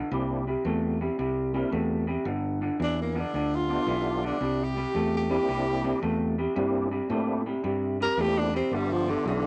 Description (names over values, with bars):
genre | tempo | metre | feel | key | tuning
electric blues shuffle | 112 BPM | 4/4 | swing 66% on 8ths | unclear | A4 = 441 Hz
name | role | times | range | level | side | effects
electric guitar through a small old amp | riff | 0.0-9.5 s | G2 to A3 | -31 LUFS | equal | none
tonewheel organ | accompaniment | 0.1-9.5 s | A3 to Bb4 | -34 LUFS | equal | slow rotary speaker, overdrive, chorus vibrato
fingered electric bass | bass | 0.1-9.5 s | G1 to A2 | -34 LUFS | equal | none
warm tenor saxophone | melody | 2.8-9.5 s | D3 to Bb4 | -31 LUFS | equal | none
room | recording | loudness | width
light reverb | none | -28 LUFS | mono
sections
0.0-9.5 A section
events
tenor saxophone solo 0.0-9.5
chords
0.1 C9; 2.3 G9; 4.4 C9; 8.7 G9